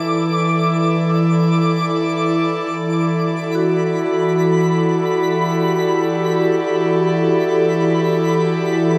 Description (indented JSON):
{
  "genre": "ambient",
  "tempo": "free time",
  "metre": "none",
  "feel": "none",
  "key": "E minor",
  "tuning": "A4 = 441 Hz",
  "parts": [
    { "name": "airy breathy pad", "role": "sustained chords", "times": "0.0-9.0 s", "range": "E3 to D5", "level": "-20 LUFS", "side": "equal", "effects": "chorus" },
    { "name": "analog drone", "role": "drone", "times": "0.0-9.0 s", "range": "E3", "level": "-25 LUFS", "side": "equal", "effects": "chorus" },
    { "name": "twinkling granular texture", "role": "texture", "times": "0.0-9.0 s", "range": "B5 to D7", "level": "-27 LUFS", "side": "equal", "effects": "built-in reverb" },
    { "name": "vibraphone with medium hard mallets", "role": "arpeggios", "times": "3.5-9.0 s", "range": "F#4 to A4", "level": "-23 LUFS", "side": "equal", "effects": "tape echo" }
  ],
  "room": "wet plate reverb, RT60 3.3 s",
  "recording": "echo-heavy mix, cassette tape",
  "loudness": "-17 LUFS",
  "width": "mono",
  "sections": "0.0-2.8 A section; 2.8-9.0 B section",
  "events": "none",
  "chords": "0.0 E7sus4; 2.8 Em11"
}